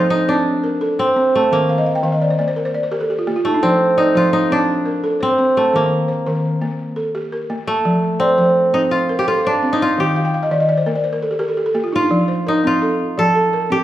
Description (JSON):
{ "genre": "west african traditional", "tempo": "113 BPM (dotted quarters)", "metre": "12/8", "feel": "straight", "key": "F mixolydian", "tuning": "A4 = 440 Hz", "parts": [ { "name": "kora", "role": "melody", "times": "0.0-13.8 s", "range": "A3 to A4", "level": "-16 LUFS", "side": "equal", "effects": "none" }, { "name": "balafon", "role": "arpeggios", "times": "0.0-13.8 s", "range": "Eb3 to G5", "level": "-19 LUFS", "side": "equal", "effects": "none" } ], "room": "wet recital hall reverb, RT60 1.5 s", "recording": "recorded in a church or concert hall", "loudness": "-15 LUFS", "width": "side -13 dB against mid", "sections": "0.0-12.1 A section; 12.1-13.8 B section", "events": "balafon fill 1.7-3.6, 10.2-12.1", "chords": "0.0 F; 1.5 Eb; 3.6 F; 5.7 Eb; 7.9 F; 10.0 Eb; 12.1 F" }